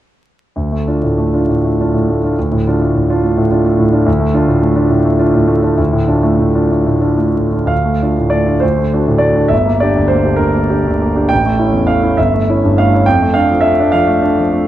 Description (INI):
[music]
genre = classical, romantic character piece for solo piano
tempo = 58-72 BPM (dotted quarters)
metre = 6/8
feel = rubato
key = D minor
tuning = A4 = 440 Hz
[part]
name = warm concert grand piano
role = solo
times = 0.6-14.7 s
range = G1 to G5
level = -11 LUFS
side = equal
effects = none
[sound]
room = moderate concert hall reverb, RT60 1.9 s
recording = close, detailed microphones, vinyl crackle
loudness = -11 LUFS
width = side -13 dB against mid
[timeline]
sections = 0.6-7.7 A section; 7.7-14.7 B section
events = none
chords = 0.6 Dm; 8.6 D7; 9.5 Gm; 11.3 A; 12.2 A7/G; 13.1 Dm/F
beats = | 0.57 1.48 | 2.36 3.23 | 4.07 4.93 | 5.79 6.71 | 7.71 8.62 | 9.51 10.41 | 11.31 12.17 | 13.05 13.93